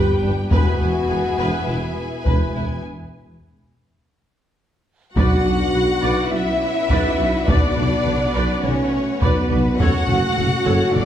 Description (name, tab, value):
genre	cinematic, epic orchestral film score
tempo	103 BPM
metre	4/4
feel	straight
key	B minor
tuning	A4 = 440 Hz
part	warm symphonic violin section	melody	0.0-11.1 s	B4 to G#5	-29 LUFS	left 2 dB	none
part	rich symphonic violin section	second line	0.0-11.1 s	D4 to F#5	-27 LUFS	left 2 dB	none
part	clear symphonic viola section	accompaniment	0.0-11.0 s	C#4 to D5	-28 LUFS	equal	none
part	clear symphonic string section	sustained chords	0.0-11.1 s	A3 to G5	-30 LUFS	left 1 dB	none
part	mellow French horn section	sustained chords	0.0-11.1 s	F#3 to G4	-27 LUFS	left 3 dB	none
part	dark tuba	bass	0.0-11.1 s	E1 to B1	-26 LUFS	right 2 dB	none
part	rich symphonic double bass section	bass	0.2-11.0 s	E1 to B1	-26 LUFS	right 1 dB	none
part	warm symphonic cello section	bass	0.2-11.1 s	E2 to F#4	-24 LUFS	right 1 dB	none
part	taiko ensemble	drums	0.5-11.1 s	none	-21 LUFS	equal	none
part	timpani	percussion	5.2-6.0 s	B2	-29 LUFS	equal	none
room	wet recital hall reverb, RT60 1.4 s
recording	heard from further back in the room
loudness	-17 LUFS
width	side -10 dB against mid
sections	0.0-5.2 A section; 5.2-11.1 A section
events	break 2.8-5.2; drum fill 4.3-5.2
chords	0.0 G; 0.5 E; 5.2 Bm; 9.8 F#m